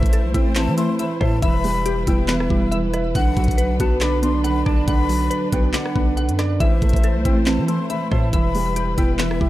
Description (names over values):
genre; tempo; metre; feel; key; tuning
hip hop, trap; 139 BPM; 4/4; half-time; B phrygian; A4 = 445 Hz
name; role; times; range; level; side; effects
breathy mellow silver concert flute; second line; 0.0-9.5 s; E5 to C6; -29 LUFS; left 5 dB; digital delay
dark concert grand piano; accompaniment; 0.0-9.5 s; D3 to E5; -24 LUFS; right 4 dB; none
dark studio string section; sustained chords; 0.0-9.5 s; F#3 to C5; -29 LUFS; left 2 dB; none
glassy wavetable pluck; arpeggios; 0.0-9.5 s; G3 to F#5; -26 LUFS; left 2 dB; chorus, digital delay
long sustained 808-style bass; bass; 0.0-9.5 s; E1 to E3; -22 LUFS; equal; none
trap drum kit; drums; 0.0-9.5 s; handclaps, hi-hat, kick drum, rim click, snare drum; -21 LUFS; equal; none
room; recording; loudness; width
light reverb, small room ambience; dark, warm production; -17 LUFS; side -15 dB against mid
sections
0.0-9.5 A section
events
none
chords
0.0 Am; 1.4 Em; 3.2 Bm; 6.6 Am; 8.3 Em